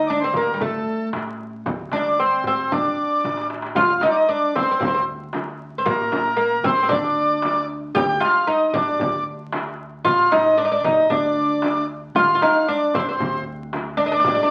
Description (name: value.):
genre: Arabic maqam ensemble.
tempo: 114 BPM.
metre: 4/4.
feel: straight.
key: D maqam kurd.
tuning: A4 = 445 Hz.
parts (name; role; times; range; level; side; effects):
oud; melody; 0.0-14.5 s; G3 to G4; -22 LUFS; equal; none.
accordion; second line; 0.0-14.5 s; A4 to G5; -25 LUFS; equal; none.
upright bass; bass; 0.0-14.5 s; A1 to D2; -40 LUFS; equal; none.
darbuka; percussion; 0.2-14.5 s; none; -34 LUFS; equal; none.
frame drum; percussion; 0.3-14.4 s; none; -31 LUFS; equal; none.
room: wet studio reverb, RT60 0.7 s.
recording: very old 78 rpm record, vinyl crackle.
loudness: -20 LUFS.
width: mono.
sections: 0.0-3.8 A section; 3.8-14.5 B section.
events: drum fill 3.2-3.8.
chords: none.